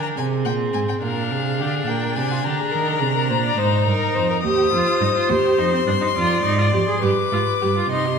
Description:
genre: classical, baroque-style fugue for string quartet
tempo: 70 BPM (dotted quarters)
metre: 12/8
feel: straight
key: C minor from 4.4 s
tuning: A4 = 439 Hz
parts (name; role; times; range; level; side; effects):
- warm violin; melody; 0.0-8.2 s; F5 to Eb6; -24 LUFS; left 8 dB; none
- warm violin; second line; 0.0-8.2 s; F4 to Eb5; -24 LUFS; left 4 dB; none
- clear viola; accompaniment; 0.0-8.2 s; C4 to Ab4; -23 LUFS; right 3 dB; none
- warm cello; bass; 0.2-8.2 s; Eb2 to Eb3; -23 LUFS; right 4 dB; none
room: wet concert hall reverb, RT60 2.3 s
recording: recorded in a church or concert hall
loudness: -18 LUFS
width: side -6 dB against mid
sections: 0.0-8.2 A section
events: none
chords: 0.0 Fm (rootless); 1.0 Bb7; 2.7 Eb5; 4.4 Cm/Eb; 6.2 Dm7b5/F; 7.0 G7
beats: 0.17 | 1.03 1.88 2.74 3.58 | 4.44 5.30 6.16 7.03 | 7.92

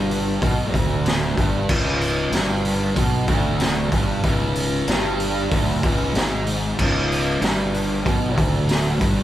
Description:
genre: stoner and doom metal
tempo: 94 BPM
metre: 4/4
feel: straight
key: unclear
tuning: A4 = 438 Hz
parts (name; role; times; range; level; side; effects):
- fuzz guitar; riff; 0.0-9.2 s; C#2 to B2; -22 LUFS; equal; distortion
- fuzz fingered electric bass; bass; 0.0-9.2 s; C#1 to B1; -27 LUFS; equal; overdrive
- raw garage drum kit; drums; 0.1-9.2 s; crash cymbal, hi-hat, kick drum, snare drum; -22 LUFS; equal; none
room: light reverb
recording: band playing live in one room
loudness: -18 LUFS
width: side -13 dB against mid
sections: 0.0-9.2 A section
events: none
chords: 0.0 C#5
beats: 0.41 1.05 | 1.69 2.33 2.96 3.60 | 4.24 4.88 5.52 6.15 | 6.79 7.43 8.07 8.71

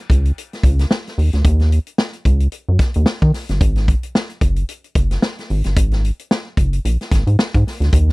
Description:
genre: funk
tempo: 111 BPM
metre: 4/4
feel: swing 56% on 16ths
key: unclear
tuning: A4 = 439 Hz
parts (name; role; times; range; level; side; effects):
- rubbery square bass; bass; 0.1-8.1 s; Gb1 to Eb3; -15 LUFS; equal; transformer saturation
- vintage drum kit; drums; 0.1-8.1 s; hi-hat, kick drum, snare drum; -18 LUFS; equal; none
room: little or no reverb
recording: dry, close 1970s-style studio recording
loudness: -15 LUFS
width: side -25 dB against mid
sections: 0.0-8.1 A section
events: none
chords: none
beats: 0.37 0.91 | 1.45 1.99 2.53 3.07 | 3.61 4.15 4.69 5.23 | 5.77 6.31 6.85 7.39 | 7.93

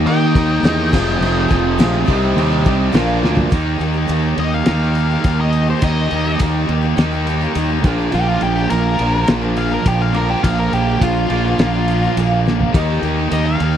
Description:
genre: classic rock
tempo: 104 BPM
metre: 4/4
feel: straight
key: unclear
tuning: A4 = 440 Hz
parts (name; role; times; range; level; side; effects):
- picked twelve-string acoustic guitar; accompaniment; 0.0-13.8 s; F2 to Ab4; -30 LUFS; right 3 dB; none
- biting overdriven guitar; riff; 0.0-3.5 s; F2 to Eb4; -21 LUFS; equal; none
- cranked stack guitar; riff; 0.0-13.8 s; F2 to Eb4; -21 LUFS; right 11 dB; overdrive
- tight distorted guitar; riff; 0.0-13.8 s; F2 to Bb4; -24 LUFS; left 15 dB; distortion
- fuzz fingered electric bass; bass; 0.0-13.8 s; F1 to Eb3; -18 LUFS; left 1 dB; overdrive
- octave-fuzz lead guitar; melody; 0.1-13.8 s; F4 to G5; -22 LUFS; left 2 dB; distortion, slapback echo
- octave-fuzz lead guitar; second line; 0.1-2.9 s; Eb5; -26 LUFS; right 3 dB; distortion
- dark grand piano; accompaniment; 0.1-3.4, 12.7-13.7 s; Eb4 to F5; -26 LUFS; left 7 dB; none
- cloth-damped thuddy drum kit; drums; 0.1-13.7 s; crash cymbal, kick drum, ride cymbal, snare drum, toms; -19 LUFS; left 1 dB; none
room: little or no reverb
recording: dry, close 1970s-style studio recording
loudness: -14 LUFS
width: side -10 dB against mid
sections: 0.0-3.5 A section; 3.5-13.8 B section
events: drum fill 3.2, 12.5; half time 3.5-13.8; lead electric guitar solo 3.5-13.8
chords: 0.0 Eb; 0.9 Fm; 2.1 Cm; 2.9 Bbadd9; 3.5 Eb; 7.8 Bb; 12.7 Eb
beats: 0.08 0.65 | 1.22 1.80 2.37 2.95 | 3.52 4.10 4.67 5.25 | 5.83 6.41 6.98 7.56 | 8.14 8.71 9.29 9.87 | 10.44 11.02 11.59 12.17 | 12.75 13.32

